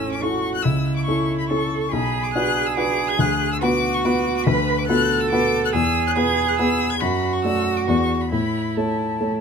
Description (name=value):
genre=quick classical-period movement for piano trio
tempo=141 BPM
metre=3/4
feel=straight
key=A major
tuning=A4 = 439 Hz
part: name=rich violin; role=melody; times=0.0-9.4 s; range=A5 to G#6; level=-25 LUFS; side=left 8 dB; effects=none
part: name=rich cello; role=second line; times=0.0-9.4 s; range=C#4 to B4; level=-23 LUFS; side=right 8 dB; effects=none
part: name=dark baby grand piano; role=accompaniment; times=0.0-9.4 s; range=A1 to D5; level=-21 LUFS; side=left 1 dB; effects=none
room=light reverb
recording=none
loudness=-18 LUFS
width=side -6 dB against mid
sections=0.0-9.4 A section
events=none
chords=0.0 A; 0.7 A/C#; 1.9 Bm; 3.2 Bm/D; 5.7 E; 7.0 D/F#; 7.9 E7; 8.3 A